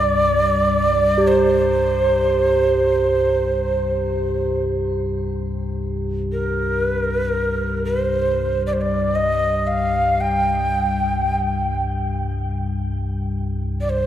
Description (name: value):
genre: world meditative, free-time meditation music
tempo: free time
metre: none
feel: none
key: unclear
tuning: A4 = 440 Hz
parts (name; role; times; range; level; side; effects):
- breathy mellow Native American-style cedar flute; melody; 0.0-14.1 s; Bb4 to G5; -19 LUFS; right 1 dB; shimmer reverb, dub echo
- deep rumbling drone; drone; 0.0-14.1 s; C2 to G2; -23 LUFS; left 2 dB; built-in reverb
- quartz singing bowl; texture; 1.2-5.8 s; G4; -25 LUFS; right 2 dB; shimmer reverb
room: wet spring reverb, RT60 1.6 s, small room ambience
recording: echo-heavy mix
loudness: -18 LUFS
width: side -11 dB against mid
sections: 0.0-5.3 A section; 5.3-14.1 A section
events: none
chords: none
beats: free time